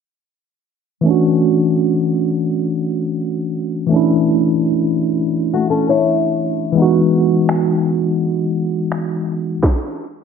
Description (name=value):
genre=contemporary R&B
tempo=84 BPM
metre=4/4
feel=swing 54% on 16ths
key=D major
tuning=A4 = 438 Hz
part: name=tine electric piano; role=accompaniment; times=1.0-9.7 s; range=E3 to F#4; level=-15 LUFS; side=equal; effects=medium stereo tremolo
part: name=nylon-string guitar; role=arpeggios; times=5.5-6.7 s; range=A3 to C#5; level=-17 LUFS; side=left 6 dB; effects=ping-pong delay
part: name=trap drum kit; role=drums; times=7.5-9.8 s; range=finger snaps, kick drum, snare drum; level=-20 LUFS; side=right 1 dB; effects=overdrive, gated reverb
room=moderate lush hall reverb, RT60 1.6 s, digital ambience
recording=bright 1980s-style digital production, low-pass filter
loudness=-14 LUFS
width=side -6 dB against mid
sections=1.1-10.2 A section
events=filter sweep 1.1-10.2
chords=1.1 Dmaj9; 6.8 Emaj9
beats=| 1.06 1.77 2.49 3.20 | 3.92 4.63 5.34 6.06 | 6.77 7.49 8.20 8.91 | 9.63